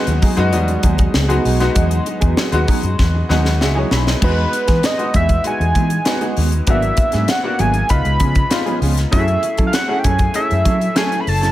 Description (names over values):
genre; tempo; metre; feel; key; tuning
polished 1980s jazz-funk pop; 98 BPM; 4/4; straight; E major; A4 = 440 Hz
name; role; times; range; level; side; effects
bright grand piano; accompaniment; 0.0-11.5 s; F#3 to B5; -22 LUFS; left 2 dB; lush chorus
chorused pulse-width pad; sustained chords; 0.0-4.2 s; F#3 to D#5; -27 LUFS; equal; none
mellow electric guitar; riff; 0.1-11.5 s; E#3 to A4; -24 LUFS; right 4 dB; lush chorus
vintage muted fingered electric bass; bass; 0.1-11.5 s; F#1 to F#3; -18 LUFS; equal; none
crisp fusion drum kit; drums; 0.1-11.5 s; crash cymbal, hi-hat, kick drum, snare drum; -19 LUFS; equal; gated reverb
fat analog lead; melody; 4.2-11.5 s; B4 to B5; -20 LUFS; equal; none
room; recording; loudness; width
light reverb, studio reverb; none; -14 LUFS; side -14 dB against mid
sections
0.0-4.2 A section; 4.2-11.5 B section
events
drum fill 3.0-4.2; grand piano fill 3.3-4.2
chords
0.0 Emaj9; 4.2 Emaj7; 6.7 G#m7b5; 7.9 C#7; 9.1 F#m7